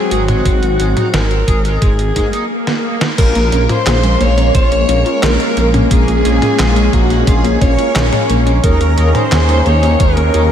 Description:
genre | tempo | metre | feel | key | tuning
synthwave | 88 BPM | 4/4 | straight | Bb minor | A4 = 439 Hz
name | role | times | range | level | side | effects
growling alto saxophone | melody | 0.0-10.5 s | Gb4 to Db5 | -18 LUFS | equal | analog delay
soft supersaw | sustained chords | 0.0-10.5 s | Eb3 to Ab4 | -19 LUFS | equal | phaser, sidechain pumping
raw garage guitar | riff | 0.1-10.4 s | Ab3 to Bb4 | -25 LUFS | left 1 dB | overdrive, lush chorus, diffuse ambient delay
dark detuned saw bass | bass | 0.1-10.5 s | Ab1 to Ab2 | -14 LUFS | equal | none
detuned 8-bit digital drum machine | drums | 0.1-10.5 s | crash cymbal, handclaps, hi-hat, snare drum, toms | -19 LUFS | equal | none
electronic kick drum | drums | 0.5-10.1 s | none | -15 LUFS | equal | none
swell | sound effects | 2.1-3.2 s | none | -22 LUFS | right 1 dB | none
string machine, violins | second line | 3.2-10.5 s | Gb4 to Db5 | -22 LUFS | equal | ensemble chorus, cassette tape, diffuse ambient delay
wide unison pluck | arpeggios | 3.2-10.4 s | Ab3 to Ab4 | -21 LUFS | left 2 dB | diffuse ambient delay
room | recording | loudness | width
moderate lush hall reverb, RT60 2.4 s | dreamy mix soaked in reverb | -10 LUFS | side -9 dB against mid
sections
0.0-3.2 A section; 3.2-10.5 B section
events
swell 2.1-3.2; stop 2.5-3.2; drum fill 2.7-3.2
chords
0.0 Ab7; 3.2 Bbm7; 8.6 Eb7sus4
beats
| 0.46 1.14 1.82 2.50 | 3.18 3.86 4.55 5.23 | 5.91 6.59 7.27 7.96 | 8.64 9.32 10.00

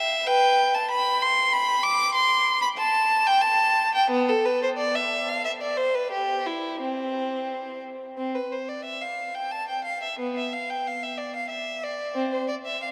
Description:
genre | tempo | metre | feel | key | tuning
classical, baroque-style suite movement for unaccompanied violin | 85-96 BPM | 3/4 | rubato | C major | A4 = 440 Hz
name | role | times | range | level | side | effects
rich violin | solo | 0.0-12.9 s | B3 to D6 | -25 LUFS | equal | none
room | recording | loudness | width
wet cathedral reverb, RT60 5.9 s | none | -24 LUFS | mono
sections
0.0-8.2 A section; 8.2-12.9 A section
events
none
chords
none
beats
| 0.26 0.90 1.52 | 2.15 2.78 3.43 | 4.11 4.77 5.44 | 6.12 6.80 7.49 | 8.18 8.85 9.52 | 10.20 10.87 11.52 | 12.16 12.81

